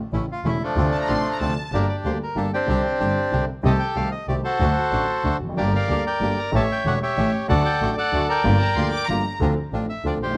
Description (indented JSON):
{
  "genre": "tango",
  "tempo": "187 BPM",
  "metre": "3/4",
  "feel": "rubato",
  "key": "G minor",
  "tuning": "A4 = 440 Hz",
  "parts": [
    { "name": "warm upright piano", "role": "accompaniment", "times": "0.1-10.4 s", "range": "E1 to A4", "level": "-29 LUFS", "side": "equal", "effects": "none" },
    { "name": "bandoneon", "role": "stabs", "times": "0.1-10.2 s", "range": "A3 to G4", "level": "-34 LUFS", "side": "equal", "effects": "none" },
    { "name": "clear double bass", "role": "bass", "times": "0.1-10.4 s", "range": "E1 to D2", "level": "-27 LUFS", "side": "equal", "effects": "none" },
    { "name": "bandoneon", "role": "melody", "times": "0.3-10.4 s", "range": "F3 to Bb5", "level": "-26 LUFS", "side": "equal", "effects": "none" },
    { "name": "rich studio violin section", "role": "second line", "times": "0.9-1.7, 8.6-9.4 s", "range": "A5 to D6", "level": "-32 LUFS", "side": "equal", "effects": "none" }
  ],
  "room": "studio reverb",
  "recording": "dry, close 1970s-style studio recording",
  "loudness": "-22 LUFS",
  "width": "mono",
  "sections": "0.0-1.7 A section; 1.7-9.4 B section",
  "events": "none",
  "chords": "0.1 A; 0.8 Dm7; 1.7 Gm; 2.7 Csus2; 3.6 Am7b5/C; 4.6 D; 5.6 Gm; 6.5 A7; 7.5 D; 8.4 Gm7; 9.4 Dm7"
}